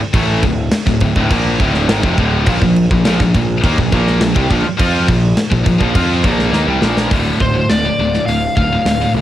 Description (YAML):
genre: heavy metal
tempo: 103 BPM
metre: 4/4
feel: straight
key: D phrygian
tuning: A4 = 440 Hz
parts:
  - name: distorted electric guitar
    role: riff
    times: 0.0-7.1 s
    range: D2 to F4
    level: -22 LUFS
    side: equal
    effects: overdrive, cassette tape
  - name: high-gain distorted guitar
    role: riff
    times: 0.0-9.2 s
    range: D2 to F4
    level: -20 LUFS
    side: right 7 dB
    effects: distortion, cassette tape
  - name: fuzz picked electric bass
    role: bass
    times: 0.0-9.2 s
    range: D1 to F2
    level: -18 LUFS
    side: equal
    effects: overdrive
  - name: scooped high-gain guitar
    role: riff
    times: 0.1-9.2 s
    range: D2 to F4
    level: -19 LUFS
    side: left 6 dB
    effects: distortion, cassette tape
  - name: tight metal drum kit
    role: drums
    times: 0.1-9.0 s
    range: crash cymbal, hi-hat, kick drum, snare drum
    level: -17 LUFS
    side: equal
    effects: cassette tape
  - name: high-gain lead guitar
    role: melody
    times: 7.4-9.1 s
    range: C5 to F5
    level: -17 LUFS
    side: left 1 dB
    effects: distortion, cassette tape
room: studio reverb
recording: home recording on cassette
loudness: -12 LUFS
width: side -12 dB against mid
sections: 0.0-7.1 A section; 7.1-9.2 B section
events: drum fill 6.5-7.1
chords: 0.0 Dm; 2.5 Bb5; 7.1 Dm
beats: | 0.14 0.72 1.30 1.88 | 2.46 3.04 3.63 4.21 | 4.79 5.37 5.95 6.53 | 7.12 7.70 8.28 8.86